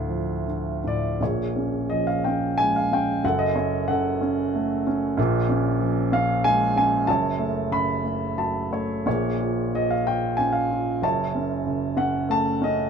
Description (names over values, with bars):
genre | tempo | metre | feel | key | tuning
classical, lyrical solo piano | 76-96 BPM | 3/4 | rubato | unclear | A4 = 441 Hz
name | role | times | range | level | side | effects
dark baby grand piano | solo | 0.0-12.9 s | F#1 to B5 | -21 LUFS | right 1 dB | none
room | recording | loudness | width
light reverb | minimal, uncompressed stereo recording | -21 LUFS | side -6 dB against mid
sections
0.0-1.2 A section; 1.2-12.9 B section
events
none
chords
0.0 Dm; 1.2 Bbm7; 3.2 F#m; 5.2 Bbm7; 7.1 F#m; 9.1 Bbm7; 11.0 F#m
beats
0.47 | 1.21 1.91 2.59 | 3.23 3.88 4.54 | 5.17 5.80 6.45 | 7.08 7.72 8.38 | 9.06 9.74 10.39 | 11.04 11.67 12.30